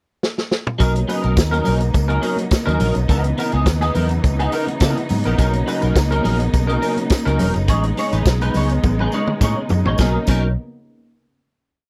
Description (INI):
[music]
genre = disco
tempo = 104 BPM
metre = 4/4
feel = straight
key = B major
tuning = A4 = 441 Hz
[part]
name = vintage drum kit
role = drums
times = 0.2-10.4 s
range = crash cymbal, hi-hat, kick drum, snare drum, toms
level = -22 LUFS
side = equal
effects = none
[part]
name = clean electric guitar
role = accompaniment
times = 0.8-10.5 s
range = E3 to C#5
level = -24 LUFS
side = equal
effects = ensemble chorus
[part]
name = dark studio string section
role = sustained chords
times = 0.8-10.2 s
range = C#3 to D#4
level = -27 LUFS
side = equal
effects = none
[part]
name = fingered electric bass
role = bass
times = 0.8-10.5 s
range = E1 to C#3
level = -22 LUFS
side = equal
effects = none
[part]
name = tambourine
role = percussion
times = 0.8-10.5 s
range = none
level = -40 LUFS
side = equal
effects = none
[part]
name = congas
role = percussion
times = 0.9-10.5 s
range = none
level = -32 LUFS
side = equal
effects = none
[sound]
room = little or no reverb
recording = dry, close 1970s-style studio recording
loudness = -18 LUFS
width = mono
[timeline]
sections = 0.0-0.8 pickup bar; 0.8-10.0 verse; 10.0-11.9 final chord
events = drum fill 0.2-0.8, 8.8-10.0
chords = 0.0 N.C.; 0.8 Bmaj9; 3.1 C#m9; 5.4 Bmaj9; 7.7 Amaj9#11; 10.0 Bmaj9